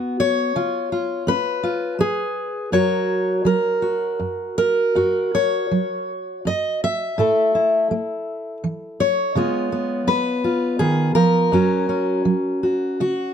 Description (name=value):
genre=folk, solo fingerstyle acoustic guitar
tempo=82 BPM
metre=3/4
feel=rubato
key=unclear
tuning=A4 = 440 Hz
part: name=fingerpicked steel-string acoustic guitar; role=solo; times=0.0-13.3 s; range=F#2 to E5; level=-18 LUFS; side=equal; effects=none
room=light reverb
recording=close, detailed microphones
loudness=-18 LUFS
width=side -8 dB against mid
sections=0.0-13.3 A section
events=none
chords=0.0 F#sus4; 0.6 C#; 2.7 F#; 7.2 A5; 9.4 C#7; 11.5 F#